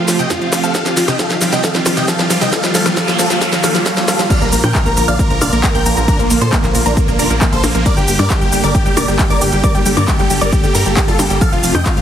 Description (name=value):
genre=uplifting trance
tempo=135 BPM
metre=4/4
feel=straight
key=unclear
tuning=A4 = 439 Hz
part: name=big supersaw lead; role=melody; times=0.0-12.0 s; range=Bb3 to G5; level=-18 LUFS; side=right 1 dB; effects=phaser, sidechain pumping, tape echo
part: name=riser and noise sweep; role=sound effects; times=0.0-4.3 s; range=none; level=-23 LUFS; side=right 2 dB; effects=none
part: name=lush unison pad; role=sustained chords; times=0.1-12.0 s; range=D3 to A4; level=-22 LUFS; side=equal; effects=chorus, phaser, sidechain pumping
part: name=wide unison pluck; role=arpeggios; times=0.1-12.0 s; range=F2 to G4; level=-22 LUFS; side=left 1 dB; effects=sidechain pumping, ping-pong delay
part: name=techno drum kit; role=drums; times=0.1-12.0 s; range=crash cymbal, handclaps, hi-hat, percussion blips, shaker, snare drum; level=-19 LUFS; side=equal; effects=overdrive, high-pass filter on hats, high-pass filter on snare, high-pass filter on perc, high-pass filter on cymbals
part: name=electronic kick drum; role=drums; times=0.3-11.9 s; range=none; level=-16 LUFS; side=equal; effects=overdrive, high-pass filter on kick
part: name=wide unison pluck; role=second line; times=4.3-12.0 s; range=Bb4 to G6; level=-23 LUFS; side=equal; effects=sidechain pumping, ping-pong delay
part: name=tight sequencer bass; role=bass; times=4.4-12.0 s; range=F1 to Bb2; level=-18 LUFS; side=equal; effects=sidechain pumping
room=light reverb, digital ambience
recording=heavily compressed radio sound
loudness=-11 LUFS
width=side -9 dB against mid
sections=0.0-4.3 A section; 4.3-12.0 B section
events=build-up 0.0-4.3; drum fill 0.0-4.3; riser 0.0-4.3; noise sweep 2.5-4.3; drop 4.3-12.0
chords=0.0 Fadd9; 0.7 Cm; 4.3 Bb; 7.9 Gm; 11.4 Fadd9